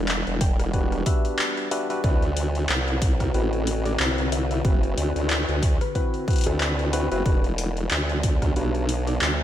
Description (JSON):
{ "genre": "glitch hop", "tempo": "92 BPM", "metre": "4/4", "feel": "swing 57% on 16ths", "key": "unclear", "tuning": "A4 = 440 Hz", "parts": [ { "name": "warbly tape-like pad", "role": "sustained chords", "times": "0.0-9.4 s", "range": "D3 to B4", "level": "-32 LUFS", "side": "left 1 dB", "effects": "chorus, built-in reverb, phaser, sidechain pumping" }, { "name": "formant-sweep wobble bass", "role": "bass", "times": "0.0-9.4 s", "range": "E1 to D2", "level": "-25 LUFS", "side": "equal", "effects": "chorus, overdrive" }, { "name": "dubstep drum kit", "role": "drums", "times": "0.1-9.4 s", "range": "handclaps, hi-hat, rim click", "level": "-28 LUFS", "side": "left 1 dB", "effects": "gated reverb" }, { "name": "woody wave-folded pluck", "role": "melody", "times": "0.4-9.2 s", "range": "F#4 to G5", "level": "-35 LUFS", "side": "left 3 dB", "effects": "analog chorus, ping-pong delay" }, { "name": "electronic kick drum", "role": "drums", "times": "0.4-8.5 s", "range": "none", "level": "-22 LUFS", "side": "equal", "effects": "none" }, { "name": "tine electric piano", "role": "stabs", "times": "0.7-8.8 s", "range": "C4 to B4", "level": "-31 LUFS", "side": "left 1 dB", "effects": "vintage 12-bit sampler grit, sidechain pumping, ping-pong delay" } ], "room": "light reverb, digital ambience", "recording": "bright 1980s-style digital production", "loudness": "-21 LUFS", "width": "side -11 dB against mid", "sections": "0.0-9.4 A section", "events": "none", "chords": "0.0 Em7; 2.0 D13; 7.3 Em7" }